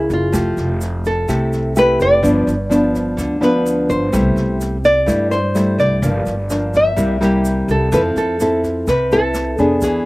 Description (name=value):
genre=bossa nova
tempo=126 BPM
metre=4/4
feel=straight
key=unclear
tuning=A4 = 440 Hz
part: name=nylon-string guitar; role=melody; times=0.0-10.1 s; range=E4 to E5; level=-18 LUFS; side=equal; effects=none
part: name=nylon-string guitar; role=accompaniment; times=0.0-10.1 s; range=G2 to A4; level=-17 LUFS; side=equal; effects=none
part: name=upright bass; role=bass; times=0.0-10.0 s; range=F1 to G2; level=-22 LUFS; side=equal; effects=none
part: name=jazz brush drum kit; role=drums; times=0.1-9.9 s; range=kick drum, rim click, snare drum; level=-29 LUFS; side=equal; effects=none
part: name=egg shaker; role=percussion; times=0.1-10.1 s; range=none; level=-37 LUFS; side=right 3 dB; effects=none
room=little or no reverb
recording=recorded outdoors, with no room sound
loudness=-14 LUFS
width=side -21 dB against mid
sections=0.0-10.1 A section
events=none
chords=0.3 Fmaj9; 2.2 G7; 4.1 C6; 6.0 Gm7; 7.0 C7; 7.9 Fmaj7